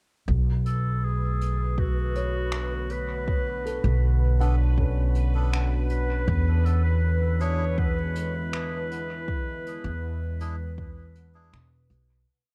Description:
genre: ambient dub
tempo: 80 BPM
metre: 4/4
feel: straight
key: B dorian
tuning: A4 = 440 Hz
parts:
  - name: warbly tape-like pad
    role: sustained chords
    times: 1.3-12.3 s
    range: D3 to B4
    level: -41 LUFS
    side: equal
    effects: chorus, built-in reverb, phaser
  - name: upright bass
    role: bass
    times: 0.3-12.2 s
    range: E1 to E2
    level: -27 LUFS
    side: equal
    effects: none
  - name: electronic kick drum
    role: drums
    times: 0.3-10.9 s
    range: none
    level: -31 LUFS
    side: equal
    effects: none
  - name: bubbling stepped-filter texture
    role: texture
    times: 0.5-12.3 s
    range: B4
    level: -43 LUFS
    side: equal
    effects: chorus, built-in reverb
  - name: bright clarinet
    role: melody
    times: 0.7-11.5 s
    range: F#4 to C#5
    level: -36 LUFS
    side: equal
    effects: dub echo
  - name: jazz brush drum kit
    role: drums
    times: 0.7-12.1 s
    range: finger snaps, hi-hat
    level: -44 LUFS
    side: equal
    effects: dub echo
  - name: felt-muted upright piano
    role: arpeggios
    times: 2.2-8.3 s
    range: C#4 to F#5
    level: -41 LUFS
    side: equal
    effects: dub echo
  - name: melodica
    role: stabs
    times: 4.4-11.6 s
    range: B3 to A4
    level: -43 LUFS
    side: equal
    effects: dub echo
room: little or no reverb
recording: echo-heavy mix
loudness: -26 LUFS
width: mono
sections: 0.3-12.3 groove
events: fade-out 8.3-12.3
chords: 0.3 Bm7; 6.3 E7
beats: | 0.28 1.03 1.78 2.53 | 3.28 4.03 4.78 5.53 | 6.28 7.03 7.78 8.53 | 9.28 10.03 10.78 11.53

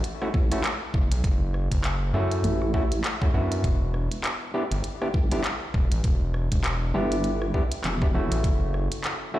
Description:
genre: glitch hop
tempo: 100 BPM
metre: 4/4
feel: swing 59% on 16ths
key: E dorian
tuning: A4 = 440 Hz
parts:
  - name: gritty driven synth bass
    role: bass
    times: 0.0-8.9 s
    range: E1 to F#2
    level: -25 LUFS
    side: equal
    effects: none
  - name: glitchy drum kit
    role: drums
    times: 0.0-9.2 s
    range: handclaps, hi-hat, rim click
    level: -32 LUFS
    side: equal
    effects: none
  - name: overdriven clav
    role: stabs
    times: 0.2-9.4 s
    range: A3 to G4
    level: -29 LUFS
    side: equal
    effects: sidechain pumping, ping-pong delay
  - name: vowel-sweep wobble bass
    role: bass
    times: 0.3-8.3 s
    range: E1 to A1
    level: -26 LUFS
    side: equal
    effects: chorus, tube saturation
  - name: electronic kick drum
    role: drums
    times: 0.3-8.6 s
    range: none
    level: -23 LUFS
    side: equal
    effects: none
room: light reverb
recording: played on a big sound system in a bare room, stone room reverb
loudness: -23 LUFS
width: side -14 dB against mid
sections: 0.0-9.4 A section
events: none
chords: 0.0 F#m7; 3.6 Em7; 8.4 F#m7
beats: 0.04 0.64 | 1.24 1.84 2.44 3.04 | 3.64 4.24 4.84 5.44 | 6.04 6.64 7.24 7.84 | 8.44 9.04

